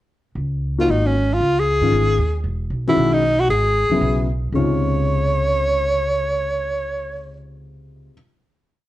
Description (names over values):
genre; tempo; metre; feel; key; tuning
modal jazz; 230 BPM; 4/4; swing 59% on 8ths; Db major; A4 = 440 Hz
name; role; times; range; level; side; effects
upright bass; bass; 0.4-8.1 s; E1 to Ab2; -22 LUFS; equal; none
clear tenor saxophone; melody; 0.8-7.4 s; Db4 to Db5; -19 LUFS; equal; none
dark baby grand piano; accompaniment; 0.8-8.1 s; C3 to Gb4; -23 LUFS; left 3 dB; none
room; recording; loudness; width
light reverb; worn, warbling old tape, cassette tape, warbly pitch drift; -17 LUFS; side -14 dB against mid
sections
0.4-4.5 A section; 4.5-6.6 final chord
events
none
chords
0.4 Dbadd9; 2.4 Emaj9; 4.5 Dbmaj9